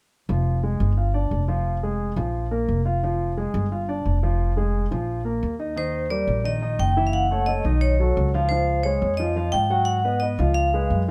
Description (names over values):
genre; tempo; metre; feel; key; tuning
Afro-Cuban jazz; 175 BPM; 4/4; straight; unclear; A4 = 436 Hz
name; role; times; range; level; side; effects
warm concert grand piano; accompaniment; 0.3-11.1 s; Eb3 to Gb5; -29 LUFS; equal; none
upright bass; bass; 0.3-11.1 s; F1 to Ab2; -26 LUFS; equal; none
vibraphone with medium hard mallets; melody; 5.8-11.0 s; C5 to G5; -27 LUFS; equal; none
room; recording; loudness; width
light reverb; none; -23 LUFS; mono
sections
0.3-5.8 A section; 5.8-11.1 B section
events
none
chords
0.3 Fmadd9; 1.0 G5; 1.7 Fm; 2.3 Bb5; 3.0 Fmadd9; 3.7 G5; 4.4 Fm; 5.1 Bbsus4; 5.8 Ebmaj7; 7.1 Gbm7; 7.8 B9; 8.5 Dbmaj9; 9.9 Abm7; 10.6 Db7